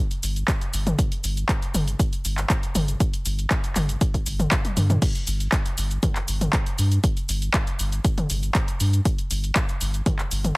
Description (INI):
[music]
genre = acid house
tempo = 119 BPM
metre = 4/4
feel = straight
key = unclear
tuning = A4 = 440 Hz
[part]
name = punchy analog drum machine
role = drums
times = 0.1-10.5 s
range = crash cymbal, handclaps, hi-hat, shaker, toms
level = -26 LUFS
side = equal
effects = none
[part]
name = warm sub bass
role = bass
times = 0.2-10.5 s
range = G1 to G2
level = -23 LUFS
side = equal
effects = sidechain pumping
[part]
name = electronic kick drum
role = drums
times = 0.5-10.2 s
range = none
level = -23 LUFS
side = equal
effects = none
[sound]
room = digital ambience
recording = heavily compressed radio sound, multiband compression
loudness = -21 LUFS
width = side -26 dB against mid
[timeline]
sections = 0.0-5.0 A section; 5.0-10.6 B section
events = drum fill 4.6-5.0; drop 5.0-10.6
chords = none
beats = 0.48 | 0.99 1.49 2.00 2.50 | 3.00 3.51 4.01 4.52 | 5.02 5.53 6.03 6.53 | 7.04 7.54 8.05 8.55 | 9.05 9.56 10.06